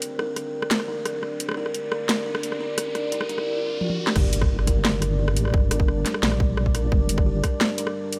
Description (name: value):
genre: half-time drum and bass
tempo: 174 BPM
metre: 4/4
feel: half-time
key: G minor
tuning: A4 = 440 Hz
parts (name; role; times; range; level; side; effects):
- deep dark ambient pad; sustained chords; 0.0-8.2 s; G3 to D5; -34 LUFS; equal; chorus, built-in reverb, sidechain pumping
- drum and bass drum kit; drums; 0.0-8.2 s; crash cymbal, hi-hat, rim click, snare drum, toms; -28 LUFS; equal; overdrive
- riser and impact; sound effects; 1.1-5.5 s; none; -36 LUFS; equal; none
- metallic inharmonic drone; texture; 0.0-3.5 s; C4; -46 LUFS; equal; none
- buzzing kalimba; arpeggios; 0.2-8.2 s; G4 to Bb4; -32 LUFS; equal; digital delay
- deep soft wobble bass; bass; 4.2-7.4 s; G1 to Bb1; -26 LUFS; equal; chorus
- electronic kick drum; drums; 4.2-7.5 s; none; -24 LUFS; equal; overdrive
room: light reverb, digital ambience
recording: none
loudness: -24 LUFS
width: mono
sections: 0.0-4.2 A section; 4.2-8.2 B section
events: build-up 0.0-4.2; riser 1.1-4.2; drum fill 3.8-4.2; drop 4.2-8.2; impact 4.2-5.5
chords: 0.0 G5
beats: | 0.02 0.37 0.71 1.05 | 1.40 1.75 2.09 2.44 | 2.78 3.12 3.47 3.81 | 4.16 4.50 4.85 5.19 | 5.54 5.88 6.23 6.57 | 6.92 7.26 7.61 7.95